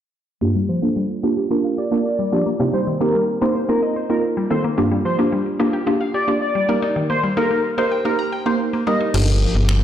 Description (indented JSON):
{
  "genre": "dance-pop",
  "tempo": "110 BPM",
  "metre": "4/4",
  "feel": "straight",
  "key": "G minor",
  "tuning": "A4 = 438 Hz",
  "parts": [
    { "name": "mallet-like synth pluck", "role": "accompaniment", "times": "0.4-9.8 s", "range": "Bb3 to Bb4", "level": "-20 LUFS", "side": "right 2 dB", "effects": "chorus, phaser, low-pass filter" },
    { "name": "mallet-like synth pluck", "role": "arpeggios", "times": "0.4-9.1 s", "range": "G2 to Bb5", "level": "-24 LUFS", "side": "left 2 dB", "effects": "chorus, low-pass filter, digital delay" },
    { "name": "octave-doubled lead", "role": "melody", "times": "0.7-9.0 s", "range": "Bb4 to Eb5", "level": "-22 LUFS", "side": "left 1 dB", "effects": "chorus, low-pass filter, digital delay" },
    { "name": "soft supersaw", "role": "sustained chords", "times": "9.1-9.8 s", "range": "F3 to G4", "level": "-26 LUFS", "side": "equal", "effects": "none" },
    { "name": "slap-like FM bass", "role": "bass", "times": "9.1-9.8 s", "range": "G1", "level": "-16 LUFS", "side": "equal", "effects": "none" },
    { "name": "punchy analog drum machine", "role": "drums", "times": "9.1-9.8 s", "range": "crash cymbal, finger snaps", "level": "-26 LUFS", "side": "left 2 dB", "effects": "none" }
  ],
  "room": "moderate plate reverb, RT60 2.6 s",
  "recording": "played on a big sound system in a bare room, large studio reverb",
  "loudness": "-17 LUFS",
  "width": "side -10 dB against mid",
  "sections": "0.4-9.1 A section",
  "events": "filter sweep 0.4-9.1",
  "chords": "0.4 Gm7; 2.6 Cm7; 4.8 Gm7; 6.7 Eb; 9.1 Gm7"
}